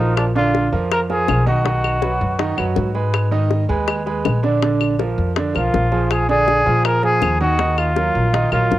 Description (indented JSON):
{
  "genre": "latin, Cuban son and guajira",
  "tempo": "162 BPM",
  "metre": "4/4",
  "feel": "straight",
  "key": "unclear",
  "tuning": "A4 = 441 Hz",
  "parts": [
    { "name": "breathy trumpet", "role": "melody", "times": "0.0-2.9, 5.6-8.8 s", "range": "D4 to Bb4", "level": "-19 LUFS", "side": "left 1 dB", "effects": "none" },
    { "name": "bright grand piano", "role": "arpeggios", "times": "0.0-8.8 s", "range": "D3 to Eb5", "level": "-21 LUFS", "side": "right 4 dB", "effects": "none" },
    { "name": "upright bass", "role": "bass", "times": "0.0-8.8 s", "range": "Ab1 to Bb2", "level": "-20 LUFS", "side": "left 1 dB", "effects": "none" },
    { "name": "bongos", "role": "percussion", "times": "0.2-8.8 s", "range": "none", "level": "-25 LUFS", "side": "left 8 dB", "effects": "none" },
    { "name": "claves", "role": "percussion", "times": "0.2-8.7 s", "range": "none", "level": "-27 LUFS", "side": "left 10 dB", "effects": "none" }
  ],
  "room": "moderate spring reverb, RT60 2.5 s",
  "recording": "home recording on cassette",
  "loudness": "-15 LUFS",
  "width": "side -14 dB against mid",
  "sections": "0.0-8.8 A section",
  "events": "none",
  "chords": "0.2 Bb; 1.7 B; 3.1 Abm; 4.6 Bb; 6.1 Bb7; 7.6 Ebmadd9",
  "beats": "| 0.17 0.54 0.91 1.28 | 1.65 2.02 2.40 2.77 | 3.14 3.51 3.88 4.25 | 4.62 4.99 5.37 5.74 | 6.11 6.48 6.85 7.22 | 7.59 7.96 8.34 8.71"
}